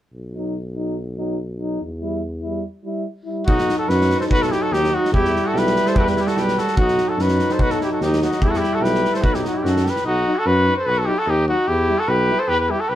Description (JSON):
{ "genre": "balkan folk, Balkan brass band", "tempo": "146 BPM", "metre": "2/4", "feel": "straight", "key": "unclear", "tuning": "A4 = 438 Hz", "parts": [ { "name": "warm tuba", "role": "bass", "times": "0.1-13.0 s", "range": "B1 to F#2", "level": "-23 LUFS", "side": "equal", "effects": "none" }, { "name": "clear euphonium", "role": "accompaniment", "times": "0.3-12.8 s", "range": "D#4 to E4", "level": "-26 LUFS", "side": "left 3 dB", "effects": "none" }, { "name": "mellow euphonium", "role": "accompaniment", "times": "0.3-12.8 s", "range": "F#3 to G3", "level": "-27 LUFS", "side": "right 5 dB", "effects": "none" }, { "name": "warm trumpet", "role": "melody", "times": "3.5-13.0 s", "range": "F#4 to C5", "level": "-20 LUFS", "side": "left 1 dB", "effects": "none" }, { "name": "clear trumpet", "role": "second line", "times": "3.5-13.0 s", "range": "D#4 to A4", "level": "-28 LUFS", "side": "right 2 dB", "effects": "none" }, { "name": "loose indie drum kit", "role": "percussion", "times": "3.5-10.0 s", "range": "kick drum, snare drum", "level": "-24 LUFS", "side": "equal", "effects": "none" } ], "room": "moderate studio ambience, RT60 0.5 s", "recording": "band playing live in one room", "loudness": "-17 LUFS", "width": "side -12 dB against mid", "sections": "0.1-3.5 A section; 3.5-10.0 B section; 10.0-13.0 B section", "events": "break 2.6-3.5", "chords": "0.1 B; 1.8 Em; 3.5 B; 5.1 Em; 6.8 B; 8.4 Em; 9.2 B; 11.7 Em", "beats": "| 0.14 0.56 | 0.97 1.39 | 1.81 2.22 | 2.64 3.06 | 3.47 3.88 | 4.30 4.71 | 5.13 5.54 | 5.95 6.36 | 6.77 7.18 | 7.59 8.01 | 8.41 8.82 | 9.23 9.64 | 10.05 10.45 | 10.86 11.27 | 11.67 12.08 | 12.48 12.89" }